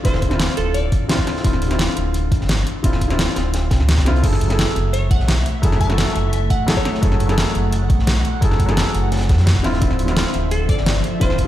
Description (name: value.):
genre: liquid drum and bass.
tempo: 172 BPM.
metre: 4/4.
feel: straight.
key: unclear.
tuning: A4 = 438 Hz.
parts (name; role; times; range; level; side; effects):
felt-muted upright piano; accompaniment; 0.0-11.5 s; D3 to A4; -23 LUFS; left 1 dB; tape echo.
sub bass with octave; bass; 0.0-11.5 s; D1 to F#2; -19 LUFS; equal; tube saturation.
electronic kick drum; drums; 0.0-11.5 s; none; -18 LUFS; equal; overdrive.
pop drum kit; drums; 0.0-11.5 s; crash cymbal, hi-hat, snare drum; -23 LUFS; equal; overdrive.
glassy wavetable pluck; melody; 0.1-1.1, 4.9-7.1, 10.5-11.4 s; A4 to A5; -27 LUFS; equal; chorus, tape echo.
crunchy breakbeat drum kit; drums; 0.1-11.5 s; hi-hat, snare drum; -32 LUFS; equal; high-pass filter on hats, high-pass filter on snare, high-pass filter on room.
glassy FM pad; sustained chords; 4.2-11.5 s; F3 to F#5; -27 LUFS; left 1 dB; ensemble chorus, built-in reverb.
room: light reverb, studio reverb.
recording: played on a big sound system in a bare room, large studio reverb.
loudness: -15 LUFS.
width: side -13 dB against mid.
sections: 0.0-11.5 A section.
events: none.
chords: 0.0 Dm9; 4.2 F#m9; 9.6 Dm9.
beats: | 0.05 0.40 0.75 1.10 | 1.45 1.79 2.14 2.49 | 2.84 3.19 3.54 3.89 | 4.24 4.58 4.93 5.28 | 5.63 5.98 6.33 6.68 | 7.03 7.38 7.72 8.07 | 8.42 8.77 9.12 9.47 | 9.82 10.17 10.52 10.86 | 11.21.